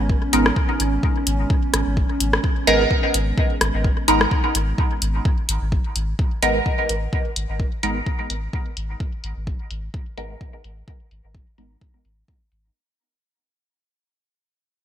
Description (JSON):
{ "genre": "dub techno", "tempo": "128 BPM", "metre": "4/4", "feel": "swing 55% on 16ths", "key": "G# minor", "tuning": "A4 = 445 Hz", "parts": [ { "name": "dark analog pad", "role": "sustained chords", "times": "0.0-5.2 s", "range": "G#3 to C#4", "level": "-28 LUFS", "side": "right 2 dB", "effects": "chorus, sidechain pumping" }, { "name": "soft dub sub bass", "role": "bass", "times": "0.0-12.7 s", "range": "G#1", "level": "-24 LUFS", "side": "equal", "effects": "sidechain pumping" }, { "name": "electronic kick drum", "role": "drums", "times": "0.1-12.4 s", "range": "none", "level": "-22 LUFS", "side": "equal", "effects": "none" }, { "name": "filtered dub chord stab", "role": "stabs", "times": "0.3-11.7 s", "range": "G#3 to A#4", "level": "-22 LUFS", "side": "right 1 dB", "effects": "phaser, sidechain pumping, dub echo" }, { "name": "deep house drum kit", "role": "drums", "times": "0.3-12.6 s", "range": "hi-hat, rim click", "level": "-24 LUFS", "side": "left 1 dB", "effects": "low-pass filter on hats, low-pass filter on snare, low-pass filter on room, dub echo" } ], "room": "light reverb", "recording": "bright 1980s-style digital production", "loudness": "-18 LUFS", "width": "side -10 dB against mid", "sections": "0.0-5.3 A section; 5.3-12.8 B section", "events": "fade-out 5.3-12.8; filter sweep on synth stab 5.3-12.8", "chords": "0.0 G#m; 5.3 N.C." }